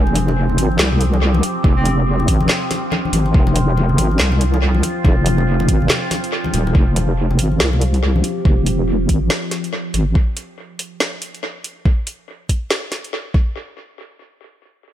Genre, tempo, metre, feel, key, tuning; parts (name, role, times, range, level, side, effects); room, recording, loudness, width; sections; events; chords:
deep dubstep; 141 BPM; 4/4; swing 60% on 16ths, half-time; F minor; A4 = 440 Hz
overtone-sweeping drone; sustained chords; 0.0-10.1 s; F3 to G4; -23 LUFS; equal; chorus, built-in reverb
wobble bass; bass; 0.0-10.1 s; Eb1 to C2; -16 LUFS; equal; chorus, tube saturation
congas; percussion; 0.1-8.2 s; -23 LUFS; left 2 dB; dub echo
garage drum kit; drums; 0.2-13.1 s; handclaps, hi-hat, snare drum; -22 LUFS; equal; overdrive, small room ambience, analog delay
electronic kick drum; drums; 1.6-13.4 s; -15 LUFS; equal; overdrive, small room ambience
rich cello; melody; 1.8 s; C4; -28 LUFS; right 2 dB; dub echo
light reverb; echo-heavy mix; -15 LUFS; side -12 dB against mid
0.0-6.7 A section; 6.7-13.6 B section; 13.6-14.9 C section
drop 0.0-6.7; filter sweep on wobble bass 6.7-10.2; filter sweep on synth drone 6.7-10.2
0.0 Fmadd9; 6.7 Fsus2; 13.3 N.C.